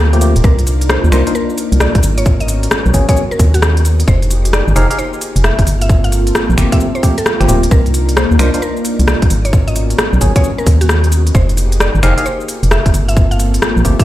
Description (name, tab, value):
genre	UK garage, two-step garage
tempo	132 BPM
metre	4/4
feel	swing 64% on 16ths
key	C minor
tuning	A4 = 440 Hz
part	mallet-like synth pluck	melody	0.0-14.0 s	Gb4 to F5	-23 LUFS	equal	chorus, digital delay
part	warm analog pad	sustained chords	0.0-14.0 s	Bb3 to Bb4	-25 LUFS	left 2 dB	chorus, sidechain pumping
part	organ-like FM bass	bass	0.0-14.0 s	D1 to Eb2	-12 LUFS	equal	sidechain pumping
part	ethereal airy pad	texture	0.0-14.0 s	Bb3 to Eb5	-23 LUFS	left 1 dB	ensemble chorus, built-in reverb, phaser, sidechain pumping
part	percussive organ stab	stabs	0.1-14.0 s	F3 to F5	-18 LUFS	equal	lush chorus, digital delay
part	garage drum kit	drums	0.1-14.0 s	cabasa, finger snaps, hi-hat, rim click	-18 LUFS	equal	none
part	electronic kick drum	drums	0.4-14.0 s	none	-13 LUFS	equal	none
room	light reverb, digital ambience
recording	played on a big sound system in a bare room, large studio reverb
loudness	-10 LUFS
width	side -14 dB against mid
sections	0.0-14.0 A section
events	none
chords	0.4 Cm11; 2.3 Abm11; 4.1 Fm11; 5.7 Gm11; 7.7 Cm11; 9.5 Abm11; 11.3 Fm11; 12.9 Gm11